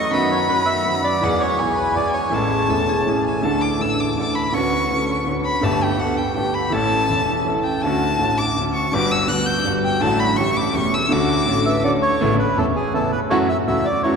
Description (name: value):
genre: tango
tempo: 164 BPM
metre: 3/4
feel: rubato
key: A major, D major from 3.4 s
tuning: A4 = 437 Hz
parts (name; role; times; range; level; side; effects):
- bandoneon; melody; 0.0-3.0, 11.7-14.2 s; G#4 to E5; -23 LUFS; right 1 dB; none
- rich violin; second line; 0.0-11.8 s; F#5 to G6; -22 LUFS; left 2 dB; none
- clear concert grand piano; accompaniment; 0.0-14.2 s; E1 to A4; -20 LUFS; equal; none
- dark studio string section; stabs; 0.0-14.2 s; D3 to B4; -27 LUFS; right 4 dB; none
- vibraphone with medium hard mallets; second line; 2.5-3.4, 11.5-12.2 s; G#4 to C#5; -28 LUFS; left 4 dB; none
room: wet cathedral reverb, RT60 5.7 s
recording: recorded in a church or concert hall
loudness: -17 LUFS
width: side -6 dB against mid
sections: 0.0-3.4 A section; 3.4-12.2 B section; 12.2-14.2 C section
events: violin solo 3.4-12.2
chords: 0.1 B/F#; 1.2 E; 2.3 Amaj7; 3.4 Dsus2; 4.5 Bmadd9/D; 5.6 Gadd9; 6.7 A; 7.8 Dmaj7; 8.9 Gmaj7; 10.0 D/A; 10.4 A7; 11.1 Dmaj7; 12.2 Aadd9; 13.3 F#m7